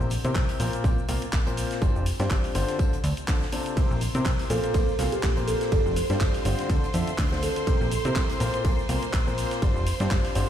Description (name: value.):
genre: piano house.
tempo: 123 BPM.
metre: 4/4.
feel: swing 56% on 16ths.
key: unclear.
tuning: A4 = 440 Hz.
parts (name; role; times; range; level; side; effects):
warm concert grand piano; riff; 0.0-10.5 s; Bb2 to F5; -30 LUFS; left 2 dB; sidechain pumping, digital delay.
plucky analog bass; bass; 0.0-10.5 s; F1 to C3; -27 LUFS; equal; sidechain pumping.
house drum kit; drums; 0.0-10.5 s; cabasa, handclaps, hi-hat, ride cymbal; -35 LUFS; equal; none.
unplugged drum kit; drums; 0.1-10.5 s; hi-hat, snare drum, tambourine; -44 LUFS; equal; high-pass filter on hats, high-pass filter on snare, high-pass filter on perc, high-pass filter on room.
electronic kick drum; drums; 0.4-10.2 s; none; -25 LUFS; equal; none.
clear symphonic string section; sustained chords; 3.8-10.5 s; C5 to C6; -35 LUFS; right 1 dB; sidechain pumping.
kalimba; melody; 4.5-7.7 s; G4 to C5; -30 LUFS; right 2 dB; vintage 12-bit sampler grit, digital delay.
room: small room ambience.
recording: played on a big sound system in a bare room, stone room reverb.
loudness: -23 LUFS.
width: side -10 dB against mid.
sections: 0.0-10.5 A section.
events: none.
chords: 0.0 C7; 0.6 Bbsus2; 1.8 G7sus4; 2.8 Dm7; 3.8 C7; 4.5 Bbsus2; 5.7 G7sus4; 6.7 Dm7; 7.7 C7; 8.4 Bbsus2; 9.6 G7sus4.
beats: 0.35 0.84 1.33 | 1.82 2.31 2.79 3.28 | 3.77 4.26 4.75 5.23 | 5.72 6.21 6.70 7.18 | 7.67 8.16 8.65 9.13 | 9.62 10.11.